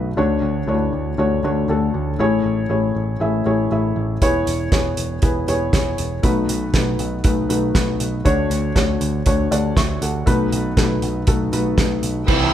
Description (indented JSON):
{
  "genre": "piano-driven pop",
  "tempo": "119 BPM",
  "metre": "4/4",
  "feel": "swing 56% on 16ths",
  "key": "unclear",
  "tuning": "A4 = 439 Hz",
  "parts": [
    { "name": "felt-muted upright piano", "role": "accompaniment", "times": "0.0-12.5 s", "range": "A2 to C#6", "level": "-20 LUFS", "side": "left 2 dB", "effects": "none" },
    { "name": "picked electric bass", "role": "bass", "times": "0.0-12.5 s", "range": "E1 to D2", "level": "-23 LUFS", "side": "right 1 dB", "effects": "none" },
    { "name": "damped 70s drum kit", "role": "drums", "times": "4.2-12.4 s", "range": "crash cymbal, hi-hat, kick drum, snare drum", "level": "-19 LUFS", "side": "right 1 dB", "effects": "none" },
    { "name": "rich symphonic string section", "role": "sustained chords", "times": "12.3-12.5 s", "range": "C4 to E6", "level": "-22 LUFS", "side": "right 1 dB", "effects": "none" },
    { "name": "crunchy overdriven guitar", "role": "riff", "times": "12.3-12.5 s", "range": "C3 to C5", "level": "-19 LUFS", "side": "right 4 dB", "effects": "phaser" }
  ],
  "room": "moderate large studio reverb, RT60 1.0 s",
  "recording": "band playing live in one room",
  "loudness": "-17 LUFS",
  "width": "side -11 dB against mid",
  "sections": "0.0-12.3 A section",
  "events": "none",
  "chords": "0.2 Dmaj7; 2.2 Amaj7; 4.2 E6; 6.2 B7; 8.3 Dmaj7; 10.3 B7"
}